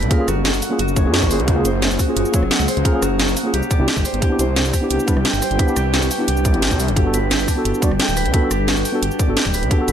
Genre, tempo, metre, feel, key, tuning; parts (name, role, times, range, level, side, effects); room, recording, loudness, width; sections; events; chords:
liquid drum and bass; 175 BPM; 4/4; straight; A4 = 440 Hz
ethereal airy pad; sustained chords; 0.0-9.9 s; A#3 to B4; -28 LUFS; left 1 dB; ensemble chorus, built-in reverb, sidechain pumping
Celtic harp; arpeggios; 0.0-9.9 s; F#3 to G5; -24 LUFS; right 1 dB; tape echo
swelling detuned saw bass; bass; 0.0-9.9 s; D1 to F#2; -21 LUFS; equal
drum and bass drum kit; drums; 0.0-9.9 s; hi-hat, rim click, shaker, snare drum; -21 LUFS; right 1 dB; overdrive, small room ambience
mellow tine electric piano; accompaniment; 0.1-9.9 s; A#3 to D5; -23 LUFS; equal; tape echo
electronic kick drum; drums; 0.1-9.8 s; -18 LUFS; equal; overdrive, small room ambience
digital ambience; lossy compression artefacts; -15 LUFS; side -9 dB against mid
0.0-9.9 A section
0.1 F#maj9; 3.5 Cmaj9; 7.0 Gmaj9